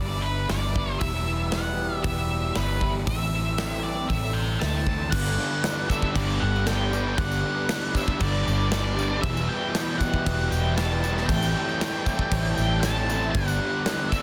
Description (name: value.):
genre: rock, shoegaze and dream pop.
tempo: 117 BPM.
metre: 4/4.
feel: straight.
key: unclear.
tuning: A4 = 439 Hz.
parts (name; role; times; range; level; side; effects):
octave-fuzz lead guitar; melody; 0.0-14.2 s; B4 to A5; -32 LUFS; equal; distortion, tape echo.
evolving wavetable pad; sustained chords; 0.0-14.2 s; G4 to C6; -41 LUFS; equal; none.
overdriven semi-hollow guitar; riff; 0.0-14.2 s; G2 to E4; -34 LUFS; equal; analog chorus.
twangy electric guitar; riff; 0.0-14.2 s; G2 to G4; -39 LUFS; equal; reverse reverb.
vintage muted fingered electric bass; bass; 0.0-13.6 s; E1 to D2; -29 LUFS; equal; none.
big rock drum kit; drums; 0.5-14.2 s; crash cymbal, hi-hat, kick drum, snare drum; -32 LUFS; equal; soft clipping on snare.
raw garage guitar; riff; 5.1-14.2 s; E2 to A3; -34 LUFS; equal; overdrive.
tambourine; percussion; 5.1-14.2 s; none; -44 LUFS; equal; none.
room: light reverb.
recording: dense, heavily limited modern master.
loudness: -25 LUFS.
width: mono.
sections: 0.0-5.1 A section; 5.1-14.2 B section.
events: none.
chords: 0.0 G; 1.0 Em; 3.1 Am7; 5.1 G; 9.2 Em; 11.3 Am7; 13.3 G.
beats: 0.50 | 1.02 1.53 2.05 2.56 | 3.08 3.59 4.10 4.62 | 5.13 5.64 6.16 6.67 | 7.18 7.70 8.21 8.72 | 9.23 9.75 10.26 10.78 | 11.29 11.80 12.32 12.83 | 13.35 13.86.